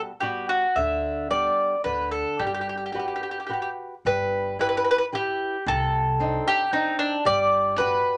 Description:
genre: italian folk, Italian serenade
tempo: 110 BPM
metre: 3/4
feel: straight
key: G major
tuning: A4 = 440 Hz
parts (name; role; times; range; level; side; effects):
- flamenco guitar; accompaniment; 0.0-8.2 s; C3 to B4; -32 LUFS; equal; none
- mandolin; melody; 0.2-8.2 s; D4 to E5; -25 LUFS; equal; none
- upright bass; bass; 0.8-8.0 s; G1 to D2; -36 LUFS; equal; none
room: moderate club reverb, RT60 0.6 s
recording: nothing above 10.3 kHz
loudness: -25 LUFS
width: mono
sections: 0.0-4.1 A section; 4.1-8.2 A section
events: none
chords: 0.0 Gmaj7; 0.8 G/D; 1.9 D5; 2.4 Gmaj7; 4.1 G6; 5.7 Cmadd9; 7.3 Gmaj7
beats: 0.21 | 0.76 1.30 1.85 | 2.40 2.95 3.50 | 4.05 4.59 5.14 | 5.67 6.20 6.73 | 7.26 7.79

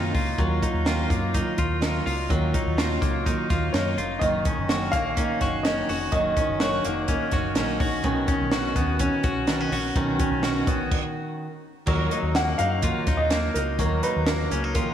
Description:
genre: jangly indie pop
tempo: 125 BPM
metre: 4/4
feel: straight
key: unclear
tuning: A4 = 440 Hz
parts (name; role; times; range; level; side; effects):
- warm upright piano; melody; 0.0-0.1, 3.7-7.8, 12.4-14.8 s; A#4 to F#5; -28 LUFS; equal; analog delay
- fingerpicked steel-string acoustic guitar; accompaniment; 0.0-14.9 s; B2 to C#5; -29 LUFS; right 3 dB; slapback echo
- direct-recorded clean electric guitar; arpeggios; 0.0-14.9 s; D#3 to F#4; -28 LUFS; left 2 dB; slapback echo, analog delay
- deep dub fingered electric bass; bass; 0.0-14.8 s; E#1 to F#2; -29 LUFS; equal; none
- compact cocktail drum kit; drums; 0.1-14.9 s; crash cymbal, hi-hat, kick drum, snare drum; -27 LUFS; equal; none
room: moderate lush hall reverb, RT60 1.9 s, small room reverb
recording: big arena sound, small room ambience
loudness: -22 LUFS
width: side -10 dB against mid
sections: 0.0-11.9 A section; 11.9-14.9 B section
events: stop 10.9-11.9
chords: 0.0 D#madd9; 8.0 Badd9; 11.9 D#madd9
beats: | 0.39 0.86 1.34 1.82 | 2.30 2.78 3.26 3.73 | 4.21 4.69 5.17 5.65 | 6.13 6.61 7.08 7.56 | 8.04 8.52 9.00 9.48 | 9.96 10.44 10.92 11.40 | 11.88 12.35 12.83 13.31 | 13.79 14.27 14.75

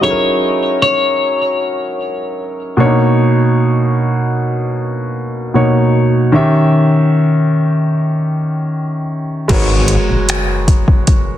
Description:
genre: contemporary R&B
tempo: 76 BPM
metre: 4/4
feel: straight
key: B major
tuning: A4 = 438 Hz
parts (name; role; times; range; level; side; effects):
- clean electric guitar; melody; 0.0-2.8 s; C#5; -15 LUFS; left 2 dB; digital delay
- warm grand piano; accompaniment; 0.0-11.4 s; B2 to E5; -13 LUFS; equal; none
- fat analog bass; bass; 9.5-10.2 s; G#1 to A#1; -15 LUFS; equal; none
- smooth R&B drum kit; drums; 9.5-11.3 s; crash cymbal, finger snaps, hi-hat, kick drum; -13 LUFS; equal; vintage 12-bit sampler grit, soft clipping on snare
- impact; sound effects; 9.7-11.4 s; none; -20 LUFS; left 1 dB; none
room: light reverb, digital ambience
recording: dense, heavily limited modern master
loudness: -12 LUFS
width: side -12 dB against mid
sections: 0.0-9.5 A section; 9.5-11.4 B section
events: impact 9.5-11.4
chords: 0.0 F#13; 2.8 Bmaj9; 6.3 D#7b9; 9.5 G#m11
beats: | 0.02 0.81 1.60 2.39 | 3.18 3.97 4.76 5.55 | 6.34 7.13 7.92 8.71 | 9.49 10.29 11.07

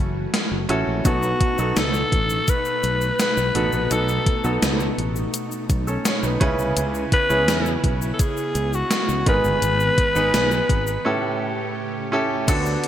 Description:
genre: 1980s-style pop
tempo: 84 BPM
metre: 4/4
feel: straight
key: unclear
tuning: A4 = 439 Hz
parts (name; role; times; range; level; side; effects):
- raspy alto saxophone; melody; 0.0-12.1 s; E4 to B4; -23 LUFS; left 1 dB; digital delay
- bright concert grand piano; accompaniment; 0.0-12.9 s; G#2 to C#5; -25 LUFS; right 2 dB; none
- string machine, violas; sustained chords; 0.0-12.9 s; B2 to G#4; -30 LUFS; equal; ensemble chorus
- fretless electric bass; bass; 0.0-12.7 s; F#1 to E2; -25 LUFS; equal; none
- gated 80s digital drum machine; drums; 0.3-12.9 s; crash cymbal, hi-hat, kick drum, snare drum; -22 LUFS; equal; gated reverb, gated reverb snare, overdrive
- tube shaker; percussion; 1.1-12.8 s; none; -37 LUFS; left 9 dB; none
room: moderate plate reverb, RT60 3.1 s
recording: bright 1980s-style digital production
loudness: -18 LUFS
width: side -10 dB against mid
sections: 0.0-12.5 A section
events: break 11.1-12.5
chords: 0.0 F#m7; 1.1 B7; 6.4 C#m7; 9.3 G#m; 11.1 A7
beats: 0.34 | 1.05 1.77 2.48 3.19 | 3.91 4.62 5.34 6.05 | 6.77 7.48 8.20 8.91 | 9.62 10.34 11.05 11.77 | 12.48

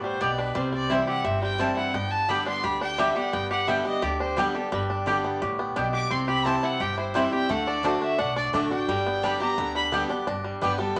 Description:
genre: bluegrass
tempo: 173 BPM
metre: 4/4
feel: straight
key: G major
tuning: A4 = 440 Hz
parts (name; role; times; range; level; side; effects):
- clear fiddle; second line; 0.0-9.9 s; A4 to D6; -31 LUFS; equal; none
- picked steel-string acoustic guitar; accompaniment; 0.0-11.0 s; G2 to G4; -33 LUFS; equal; none
- bluegrass banjo; arpeggios; 0.0-11.0 s; G3 to G4; -31 LUFS; equal; none
- upright bass; bass; 0.0-11.0 s; G1 to D2; -38 LUFS; equal; none
- mandolin; stabs; 0.2-10.7 s; A3 to A5; -31 LUFS; equal; none
- clear fiddle; melody; 10.6-11.0 s; A4 to B4; -35 LUFS; equal; none
room: wet studio reverb, RT60 0.9 s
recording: none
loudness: -26 LUFS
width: mono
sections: 0.0-10.3 A section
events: fiddle solo 0.0-10.3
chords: 0.0 G; 0.6 C; 1.9 G; 6.1 C; 7.5 D; 8.9 G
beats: 0.21 | 0.56 0.90 1.25 1.60 | 1.95 2.29 2.64 2.99 | 3.33 3.68 4.03 4.38 | 4.72 5.07 5.42 5.76 | 6.11 6.46 6.81 7.15 | 7.50 7.85 8.19 8.54 | 8.89 9.23 9.58 9.93 | 10.28 10.62 10.97

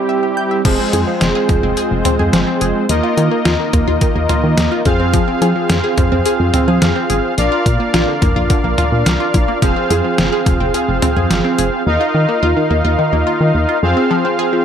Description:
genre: synth-pop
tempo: 107 BPM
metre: 4/4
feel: straight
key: F dorian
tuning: A4 = 440 Hz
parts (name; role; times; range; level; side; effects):
- analog synth brass; accompaniment; 0.0-14.6 s; G3 to F5; -16 LUFS; right 1 dB; chorus
- wide unison pluck; arpeggios; 0.1-14.6 s; D3 to G6; -20 LUFS; equal; phaser, tape echo
- solid FM bass; bass; 0.7-13.9 s; F1 to F3; -17 LUFS; equal; none
- detuned 8-bit digital drum machine; drums; 0.7-11.7 s; cowbell, crash cymbal, hi-hat, kick drum, snare drum, toms; -17 LUFS; equal; overdrive
room: light reverb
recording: none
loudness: -12 LUFS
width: side -8 dB against mid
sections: 0.7-14.6 A section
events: break 0.0-0.7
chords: 0.0 C; 0.7 Fm; 2.9 Ebsus2; 4.9 Fm; 7.4 Bb; 9.6 Fm; 11.9 Ebsus2; 13.8 Fm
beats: 0.09 | 0.65 1.21 1.77 2.33 | 2.89 3.45 4.01 4.58 | 5.14 5.70 6.26 6.82 | 7.38 7.94 8.50 9.06 | 9.62 10.18 10.74 11.30 | 11.87 12.43 12.99 13.55 | 14.11

